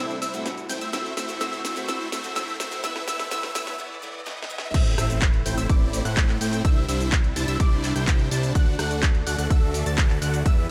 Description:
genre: EDM, festival progressive house.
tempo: 126 BPM.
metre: 4/4.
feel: straight.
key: unclear.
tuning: A4 = 439 Hz.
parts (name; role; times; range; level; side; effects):
picked steel-string acoustic guitar; accompaniment; 0.0-4.7 s; A2 to F#4; -39 LUFS; equal; sidechain pumping, delay.
muted studio string section; sustained chords; 0.0-10.7 s; D2 to B4; -39 LUFS; equal; sidechain pumping.
unison pluck; arpeggios; 0.0-10.7 s; D6 to A6; -35 LUFS; equal; sidechain pumping, delay.
supersaw chords; riff; 0.0-10.7 s; G3 to A5; -33 LUFS; equal; phaser, sidechain pumping, delay.
riser and impact; sound effects; 1.8-6.6 s; none; -38 LUFS; equal; none.
house drum kit; drums; 0.1-10.6 s; crash cymbal, handclaps, hi-hat, ride cymbal, rim click, shaker, snare drum; -33 LUFS; equal; none.
fat analog bass; bass; 4.7-10.7 s; A1 to A2; -29 LUFS; equal; tube saturation, sidechain pumping.
electronic kick drum; drums; 4.7-10.6 s; none; -22 LUFS; equal; none.
room: light reverb, digital ambience.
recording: high-pass filter.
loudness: -24 LUFS.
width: mono.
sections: 0.0-4.7 A section; 4.7-10.7 B section.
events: build-up 0.0-4.7; drum fill 0.0-3.8, 4.3-4.7; break 3.8-4.7; drop 4.7-10.7; impact 4.7-6.6.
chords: 0.0 Cadd9; 0.9 D; 2.8 Em; 4.7 Am; 6.6 Cadd9; 8.6 D.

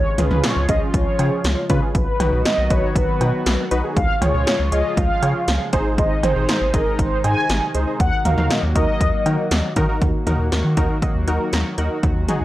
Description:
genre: synth-pop.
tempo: 119 BPM.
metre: 4/4.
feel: straight.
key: Eb minor.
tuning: A4 = 440 Hz.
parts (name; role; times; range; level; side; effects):
mellow synth brass; melody; 0.0-9.7 s; Bb4 to Ab5; -23 LUFS; equal; chorus.
chorused pulse-width pad; sustained chords; 0.0-12.4 s; C3 to F#4; -27 LUFS; equal; none.
round analog bass; bass; 0.0-12.4 s; Ab1 to Eb3; -21 LUFS; equal; none.
warm analog keys; accompaniment; 0.2-12.4 s; Db4 to Eb5; -25 LUFS; equal; chorus.
80s electronic pad drums; drums; 0.2-12.4 s; cowbell, hi-hat, kick drum, snare drum, toms; -21 LUFS; equal; gated reverb on snare and toms.
analog pluck; arpeggios; 10.0-12.4 s; Eb3 to Gb6; -30 LUFS; right 2 dB; chorus, tape echo.
room: little or no reverb.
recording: dry, gritty hardware recording.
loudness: -17 LUFS.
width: side -15 dB against mid.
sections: 0.0-10.0 A section; 10.0-12.4 B section.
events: none.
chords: 0.0 Db; 1.9 B; 4.0 Db; 5.7 Ab; 8.0 Ebm.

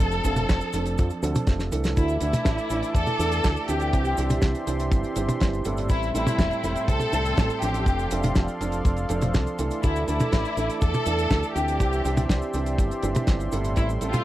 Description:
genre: italo disco.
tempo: 122 BPM.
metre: 4/4.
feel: straight.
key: D minor.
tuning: A4 = 441 Hz.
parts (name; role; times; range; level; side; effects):
warm studio violin section; melody; 0.0-14.2 s; E4 to A4; -28 LUFS; left 1 dB; tape echo.
dark grand piano; stabs; 0.0-14.2 s; A2 to E5; -30 LUFS; right 4 dB; vintage 12-bit sampler grit.
fingered electric bass with an envelope filter; bass; 0.0-14.1 s; E1 to F2; -28 LUFS; equal; none.
damped 70s drum kit; drums; 0.0-14.2 s; cabasa, hi-hat, snare drum, toms; -28 LUFS; equal; none.
kick drum; drums; 0.0-13.9 s; none; -22 LUFS; equal; none.
warm analog pad; sustained chords; 2.0-14.2 s; G4 to D6; -33 LUFS; left 1 dB; chorus.
room: light reverb.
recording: dry, close 1970s-style studio recording.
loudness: -22 LUFS.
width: side -14 dB against mid.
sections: 0.0-14.2 A section.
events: drum fill 1.5-2.0.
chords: 0.0 F6; 2.0 Dsus2; 3.9 Cadd9; 5.9 Am7; 7.9 F6; 9.8 Dsus2; 11.8 Cadd9.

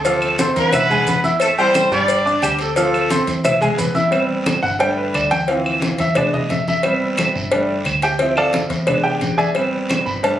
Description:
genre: latin, salsa.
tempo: 177 BPM.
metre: 4/4.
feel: straight.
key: A minor.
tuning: A4 = 440 Hz.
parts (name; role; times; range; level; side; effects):
dark horn section; melody; 0.0-3.2 s; G3 to D5; -18 LUFS; equal; none.
deep dub fingered electric bass; bass; 0.0-10.4 s; G1 to E2; -28 LUFS; equal; none.
cowbell; percussion; 0.0-10.4 s; none; -22 LUFS; left 2 dB; none.
guiro; percussion; 0.0-10.4 s; none; -31 LUFS; right 1 dB; none.
bright baby grand piano; accompaniment; 0.1-10.4 s; E3 to G6; -19 LUFS; right 1 dB; none.
congas; percussion; 0.1-10.4 s; none; -24 LUFS; left 1 dB; none.
maracas; percussion; 0.1-4.1 s; none; -33 LUFS; right 2 dB; none.
claves; percussion; 0.2-10.1 s; none; -24 LUFS; right 2 dB; none.
room: moderate studio reverb, RT60 0.7 s.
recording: recorded on a phone in the room, club reverb, compression.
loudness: -15 LUFS.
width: side -11 dB against mid.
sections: 0.0-4.1 A section; 4.1-10.4 B section.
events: grand piano solo 4.1-10.4.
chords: 0.0 Dm7; 0.7 E7; 1.4 Am7; 2.1 G5; 2.8 Dm7; 3.4 E; 4.1 Am7; 4.8 Gsus2; 5.5 Dm7; 6.2 E7; 6.8 Am7; 7.5 Gsus2; 8.2 Dm7; 8.9 E7; 9.6 Am7.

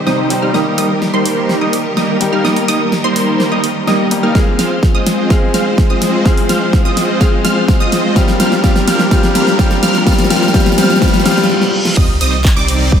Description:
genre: EDM, festival progressive house.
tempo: 126 BPM.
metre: 4/4.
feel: straight.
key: C minor.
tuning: A4 = 439 Hz.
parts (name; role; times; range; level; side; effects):
clear baby grand piano; accompaniment; 0.0-12.0 s; C3 to Ab4; -18 LUFS; left 2 dB; sidechain pumping, diffuse ambient delay.
rich symphonic string section; sustained chords; 0.0-13.0 s; C3 to C5; -21 LUFS; right 1 dB; sidechain pumping.
riser, reverse cymbal and sub drop; sound effects; 5.7-13.0 s; none; -27 LUFS; equal; none.
wide unison pluck; arpeggios; 0.1-13.0 s; C6 to F6; -21 LUFS; right 2 dB; phaser, sidechain pumping, diffuse ambient delay.
supersaw chords; riff; 0.1-13.0 s; G3 to F5; -17 LUFS; right 1 dB; sidechain pumping, low-pass filter, diffuse ambient delay.
big-room dance drum kit; drums; 0.1-12.8 s; crash cymbal, handclaps, hi-hat, snare drum; -17 LUFS; equal; none.
electronic kick drum; drums; 4.4-13.0 s; none; -13 LUFS; equal; none.
saturated sub bass; bass; 12.0-13.0 s; C2; -17 LUFS; equal; sidechain pumping.
room: wet plate reverb, RT60 2.4 s.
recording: dreamy mix soaked in reverb.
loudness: -10 LUFS.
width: side -8 dB against mid.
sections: 0.0-12.0 A section; 12.0-13.0 B section.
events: build-up 0.0-12.0; drum fill 0.0-11.5, 11.5-12.0; filter sweep on supersaw synth 0.0-12.0; reverse cymbal 11.1-12.0; stop 11.5-12.0; drop 12.0-13.0; impact 12.0-13.0.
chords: 0.0 Cm; 0.5 Eb; 4.4 Fm; 8.2 Gm7; 12.0 Cm.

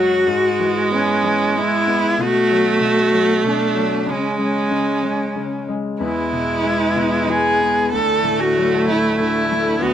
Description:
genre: acoustic folk-pop ballad.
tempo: 94 BPM.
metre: 3/4.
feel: straight.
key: unclear.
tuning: A4 = 440 Hz.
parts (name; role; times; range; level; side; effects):
warm cello; melody; 0.0-9.9 s; C#4 to A4; -18 LUFS; equal; none.
clear viola; second line; 0.0-9.9 s; F#3 to B3; -20 LUFS; right 3 dB; none.
clear concert grand piano; accompaniment; 0.0-9.9 s; D2 to C#4; -24 LUFS; left 4 dB; none.
hand-pumped harmonium; sustained chords; 6.0-9.9 s; D2 to B4; -28 LUFS; left 2 dB; none.
room: moderate studio reverb, RT60 0.5 s.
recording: none.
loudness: -16 LUFS.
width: side -10 dB against mid.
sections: 0.0-9.9 A section.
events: none.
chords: 0.3 E/G#; 2.2 Bm; 4.1 C#5; 6.0 E; 7.9 Dadd9.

